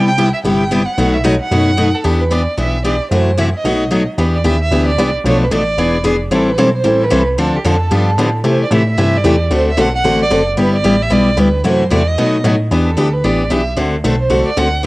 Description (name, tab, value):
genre	acoustic string swing (jazz manouche)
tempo	225 BPM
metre	4/4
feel	swing 57% on 8ths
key	E minor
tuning	A4 = 444 Hz
part	dark violin	melody	0.0-14.8 s	G4 to G5	-18 LUFS	right 2 dB	cassette tape
part	picked steel-string acoustic guitar	accompaniment	0.0-14.9 s	B2 to A4	-14 LUFS	left 1 dB	cassette tape
part	plucky analog bass	bass	0.0-14.9 s	E1 to C3	-17 LUFS	equal	none
room	light reverb, small room ambience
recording	home recording on cassette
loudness	-12 LUFS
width	side -20 dB against mid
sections	0.0-4.2 A section; 4.2-12.7 B section; 12.7-14.9 C section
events	violin solo 12.7-14.9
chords	0.0 Cmaj7; 1.0 B7; 2.0 Em7; 3.1 F#m7b5; 3.6 B7; 4.2 Em7; 5.3 Bm7b5; 5.8 E7b9; 6.3 Am7; 7.4 Dm7; 7.9 G9; 8.4 C6; 9.5 D7; 10.6 G6; 11.6 F#m7b5; 12.2 B7; 12.7 Em7; 13.8 D7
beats	0.17 0.44 0.71 | 0.97 1.24 1.51 1.78 | 2.04 2.31 2.58 2.85 | 3.11 3.38 3.65 3.92 | 4.18 4.45 4.72 4.98 | 5.25 5.52 5.79 6.05 | 6.32 6.58 6.85 7.12 | 7.38 7.65 7.92 8.18 | 8.45 8.71 8.98 9.25 | 9.51 9.78 10.04 10.31 | 10.58 10.84 11.11 11.38 | 11.64 11.91 12.18 12.44 | 12.71 12.97 13.24 13.51 | 13.78 14.04 14.31 14.57 | 14.84